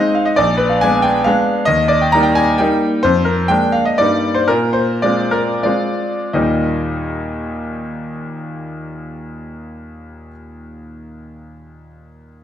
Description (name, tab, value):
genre	classical, romantic triple-time dance for piano with dotted rhythms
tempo	78-142 BPM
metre	3/4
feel	rubato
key	Eb major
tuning	A4 = 440 Hz
part	bright concert grand piano	solo	0.0-12.4 s	Bb1 to Bb5	-15 LUFS	equal	none
room	wet recital hall reverb, RT60 1.4 s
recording	none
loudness	-13 LUFS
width	side -10 dB against mid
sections	0.0-6.3 A section; 6.3-10.3 B section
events	slowing down 2.4-6.3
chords	0.4 Bb7b9; 1.7 Eb; 3.0 Bb7/F; 4.0 Eb/G; 4.5 Bb9; 6.3 Eb